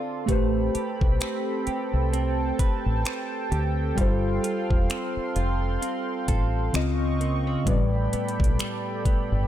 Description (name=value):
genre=contemporary R&B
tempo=65 BPM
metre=4/4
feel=swing 58% on 16ths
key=unclear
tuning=A4 = 439 Hz
part: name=muted felt-like synth keys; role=accompaniment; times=0.0-9.5 s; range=A2 to D#5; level=-29 LUFS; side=left 2 dB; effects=chorus
part: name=chorused pulse-width pad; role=sustained chords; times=0.0-9.5 s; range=C4 to C#6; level=-32 LUFS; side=right 1 dB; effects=sidechain pumping
part: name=direct-recorded clean electric guitar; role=arpeggios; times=0.0-9.5 s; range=A2 to B4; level=-32 LUFS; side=right 8 dB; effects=analog chorus, ping-pong delay
part: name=deep dub fingered electric bass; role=bass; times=0.3-9.5 s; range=E1 to D2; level=-26 LUFS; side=equal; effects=none
part: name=smooth R&B drum kit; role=drums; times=0.3-9.3 s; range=finger snaps, hi-hat, kick drum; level=-25 LUFS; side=equal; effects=none
room=little or no reverb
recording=none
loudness=-23 LUFS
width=side -11 dB against mid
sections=0.0-9.5 A section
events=none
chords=0.3 Am9; 4.0 G9sus4; 6.7 C#maj9; 7.7 A9sus4